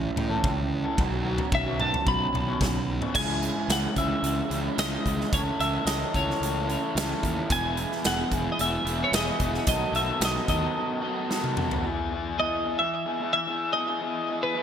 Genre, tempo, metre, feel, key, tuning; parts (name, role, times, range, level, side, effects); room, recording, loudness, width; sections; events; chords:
indie rock; 111 BPM; 4/4; straight; E major; A4 = 445 Hz
twelve-string electric guitar; melody; 0.0-14.6 s; B4 to B5; -28 LUFS; equal; wide subtle chorus, digital delay
crunchy overdriven guitar; riff; 0.0-11.8 s; E2 to F#4; -32 LUFS; right 7 dB; analog chorus
fuzz fingered electric bass; bass; 0.0-10.7 s; E1 to A2; -31 LUFS; equal; overdrive
big rock drum kit; drums; 0.2-11.8 s; crash cymbal, hi-hat, kick drum, snare drum, toms; -30 LUFS; equal; gated reverb
raw garage guitar; riff; 0.3-14.6 s; E3 to A4; -31 LUFS; left 4 dB; overdrive
moderate lush hall reverb, RT60 2.1 s; bright 1980s-style digital production; -24 LUFS; side -8 dB against mid
0.0-3.2 A section; 3.2-11.8 B section; 11.8-14.6 C section
clean electric guitar solo 0.0-3.2; break 10.8-11.8; drum fill 11.3-11.8
0.0 A; 1.0 Bsus2; 3.2 C#m; 5.3 A/C#; 7.5 E; 9.7 B7; 11.8 Emaj7